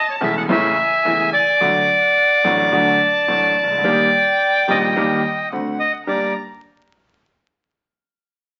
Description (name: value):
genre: tango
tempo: 108 BPM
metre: 4/4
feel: rubato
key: G harmonic minor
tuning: A4 = 439 Hz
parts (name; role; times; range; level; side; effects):
- bandoneon; melody; 0.0-6.3 s; C#5 to F#5; -18 LUFS; equal; none
- warm violin; second line; 0.0-6.3 s; F#5 to Bb5; -29 LUFS; equal; none
- bright concert grand piano; accompaniment; 0.2-6.3 s; E1 to G4; -24 LUFS; equal; none
- upright bass; bass; 0.2-6.3 s; E1 to Eb2; -37 LUFS; equal; none
room: wet studio reverb, RT60 0.8 s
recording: very old 78 rpm record, vinyl crackle, nothing above 7.8 kHz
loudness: -17 LUFS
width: mono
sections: 0.0-6.1 A section; 6.1-8.3 B section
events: none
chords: 0.0 A; 1.6 D; 3.8 Eb; 5.5 D7; 6.1 Gm